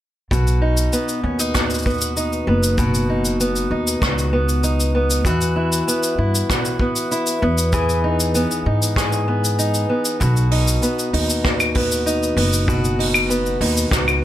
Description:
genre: folktronica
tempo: 97 BPM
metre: 4/4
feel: straight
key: B major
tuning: A4 = 440 Hz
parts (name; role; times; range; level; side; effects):
- fingerpicked steel-string acoustic guitar; arpeggios; 0.3-14.2 s; B2 to G#4; -20 LUFS; equal; ping-pong delay
- upright bass; bass; 0.3-14.2 s; F#1 to G#2; -21 LUFS; equal; none
- kick drum; drums; 0.3-14.0 s; none; -23 LUFS; equal; none
- vintage brush drum kit; drums; 0.3-14.2 s; cabasa, claves, hi-hat, rim click; -23 LUFS; equal; none
room: light reverb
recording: none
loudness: -16 LUFS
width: side -12 dB against mid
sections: 0.3-14.2 A section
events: none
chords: 0.3 B; 5.3 Esus2; 7.7 Emaj7; 10.2 B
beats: | 0.31 0.93 1.55 2.17 | 2.79 3.40 4.02 4.64 | 5.26 5.88 6.50 7.12 | 7.73 8.35 8.97 9.59 | 10.21 10.83 11.45 12.06 | 12.68 13.30 13.92

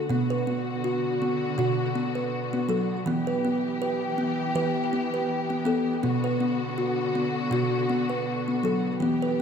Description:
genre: world meditative, meditative tuned percussion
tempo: 81 BPM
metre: 4/4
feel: swing 54% on 16ths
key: unclear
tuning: A4 = 439 Hz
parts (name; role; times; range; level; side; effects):
- muted studio string section; sustained chords; 0.0-9.4 s; D3 to G4; -30 LUFS; left 2 dB; none
- kalimba; arpeggios; 0.0-9.4 s; B2 to B4; -25 LUFS; equal; tape echo
room: wet echo chamber reverb, RT60 1.4 s, small room ambience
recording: none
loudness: -24 LUFS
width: side -7 dB against mid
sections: 0.1-9.4 A section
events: none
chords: 0.1 Bm; 3.1 Em; 6.0 Bm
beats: | 0.10 0.84 1.59 2.33 | 3.07 3.82 4.56 5.30 | 6.04 6.79 7.53 8.28 | 9.02

